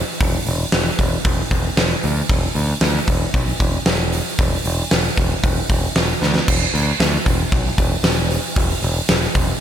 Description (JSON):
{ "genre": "hard rock", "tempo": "115 BPM", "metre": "4/4", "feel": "straight", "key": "unclear", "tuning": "A4 = 441 Hz", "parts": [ { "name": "growling picked electric bass", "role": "bass", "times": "0.2-9.5 s", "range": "E1 to D2", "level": "-21 LUFS", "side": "equal", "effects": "overdrive" }, { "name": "big rock drum kit", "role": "drums", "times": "0.2-9.5 s", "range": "crash cymbal, hi-hat, kick drum, snare drum", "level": "-18 LUFS", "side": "equal", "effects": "none" } ], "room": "little or no reverb", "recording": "none", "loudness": "-16 LUFS", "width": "side -10 dB against mid", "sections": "0.0-6.5 A section; 6.5-9.6 A section", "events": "drum fill 6.2", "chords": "none", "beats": "| 0.20 0.73 1.25 1.77 | 2.30 2.82 3.34 3.86 | 4.39 4.91 5.43 5.96 | 6.48 7.00 7.52 8.04 | 8.56 9.09" }